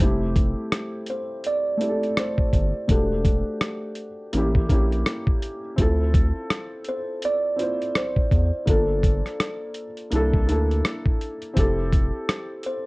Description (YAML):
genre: lo-fi hip hop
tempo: 83 BPM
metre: 4/4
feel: swing 60% on 16ths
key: F major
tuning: A4 = 440 Hz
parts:
  - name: felt-muted upright piano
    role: accompaniment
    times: 0.0-12.9 s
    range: A3 to C5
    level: -28 LUFS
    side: equal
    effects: cassette tape, low-pass filter
  - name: round analog bass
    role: bass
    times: 0.0-12.1 s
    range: E1 to E2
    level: -23 LUFS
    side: equal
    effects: none
  - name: dusty soul sampler-style drum kit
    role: drums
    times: 0.0-12.8 s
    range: hi-hat, kick drum, rim click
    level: -22 LUFS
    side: equal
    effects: none
  - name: kalimba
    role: melody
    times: 1.1-12.9 s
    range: A4 to D5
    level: -27 LUFS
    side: right 1 dB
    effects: low-pass filter
room: moderate studio reverb, RT60 0.6 s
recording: worn, warbling old tape, cassette tape, warbly pitch drift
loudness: -21 LUFS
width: side -24 dB against mid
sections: 0.0-12.9 A section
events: none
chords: 0.0 Fmaj9; 2.9 Em11; 4.3 A7b9; 5.8 Dm9; 8.7 Gm7; 10.1 C13; 11.6 Fmaj7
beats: | 0.00 0.72 1.44 2.17 | 2.89 3.61 4.34 5.06 | 5.78 6.50 7.23 7.95 | 8.67 9.40 10.12 10.84 | 11.56 12.29